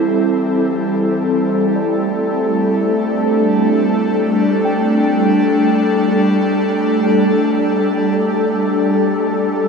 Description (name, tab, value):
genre	ambient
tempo	free time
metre	none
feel	none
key	unclear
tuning	A4 = 440 Hz
part	airy breathy pad	sustained chords	0.0-9.7 s	G3 to A4	-14 LUFS	equal	chorus
part	muted felt-like synth keys	arpeggios	0.0-9.7 s	E3 to G5	-26 LUFS	equal	chorus, tape echo
room	wet huge ambient reverb, RT60 8.6 s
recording	dreamy mix soaked in reverb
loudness	-13 LUFS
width	side -5 dB against mid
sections	0.0-9.7 A section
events	fade-in on synth keys 0.0-9.7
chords	0.0 Am7; 1.8 Gsus2